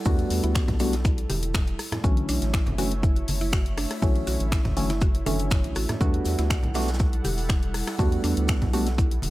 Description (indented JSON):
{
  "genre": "deep house",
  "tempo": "121 BPM",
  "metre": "4/4",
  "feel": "swing 53% on 16ths",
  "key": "E minor",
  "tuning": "A4 = 439 Hz",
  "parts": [
    { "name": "airy breathy pad", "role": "sustained chords", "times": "0.0-9.3 s", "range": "G3 to F#5", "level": "-35 LUFS", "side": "right 2 dB", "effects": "chorus, sidechain pumping" },
    { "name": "mallet-like synth pluck", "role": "arpeggios", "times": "0.1-9.0 s", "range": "D4 to G4", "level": "-36 LUFS", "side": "equal", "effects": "chorus, sidechain pumping, analog delay" },
    { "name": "percussive organ stab", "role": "stabs", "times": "0.1-8.9 s", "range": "D3 to F#4", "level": "-29 LUFS", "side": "equal", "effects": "chorus, phaser, sidechain pumping, tape echo" },
    { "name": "round analog bass", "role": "bass", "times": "0.1-9.3 s", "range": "E1 to E2", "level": "-27 LUFS", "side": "equal", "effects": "tube saturation, sidechain pumping" },
    { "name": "electronic kick drum", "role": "drums", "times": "0.1-9.1 s", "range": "none", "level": "-24 LUFS", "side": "equal", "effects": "overdrive" },
    { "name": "tight funk drum kit", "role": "drums", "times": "0.1-9.3 s", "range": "hi-hat, shaker, snare drum", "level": "-41 LUFS", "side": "equal", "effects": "high-pass filter on hats, high-pass filter on snare, high-pass filter on perc, high-pass filter on room" },
    { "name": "congas", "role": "percussion", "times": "0.1-9.3 s", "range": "none", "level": "-34 LUFS", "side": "right 1 dB", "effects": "none" },
    { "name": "house drum kit", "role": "drums", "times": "0.2-9.3 s", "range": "finger snaps, hi-hat, rim click", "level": "-32 LUFS", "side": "left 1 dB", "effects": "overdrive" }
  ],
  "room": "small room reverb",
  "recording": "none",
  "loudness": "-22 LUFS",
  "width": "side -17 dB against mid",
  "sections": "0.0-9.3 A section",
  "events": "filter sweep on synth stab 0.0-9.3",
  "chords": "0.0 Em11; 1.8 Bm11; 6.0 Em11",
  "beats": "| 0.06 0.55 1.05 1.54 | 2.04 2.54 3.03 3.53 | 4.02 4.52 5.02 5.51 | 6.01 6.50 7.00 7.50 | 7.99 8.49 8.98"
}